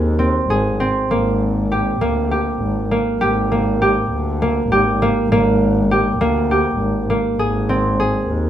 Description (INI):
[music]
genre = contemporary instrumental, chamber music in an uneven meter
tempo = 200 BPM (eighths)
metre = 7/8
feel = straight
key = unclear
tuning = A4 = 440 Hz
[part]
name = concert harp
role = arpeggios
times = 0.0-8.5 s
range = Bb3 to Ab4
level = -18 LUFS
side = right 1 dB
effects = none
[part]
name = warm double bass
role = bass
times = 0.0-8.5 s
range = Ab1 to Eb2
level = -19 LUFS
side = equal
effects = none
[sound]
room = wet studio reverb, RT60 0.8 s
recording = heard from further back in the room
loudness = -15 LUFS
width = side -10 dB against mid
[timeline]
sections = 0.0-8.5 A section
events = none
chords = 0.0 Ab; 1.1 Gm/Ab; 7.4 Ab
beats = 0.19 0.49 0.80 | 1.10 1.41 1.71 2.01 2.31 2.61 2.91 | 3.21 3.51 3.81 4.11 4.41 4.71 5.01 | 5.31 5.60 5.90 6.20 6.50 6.79 7.09 | 7.39 7.69 7.99 8.29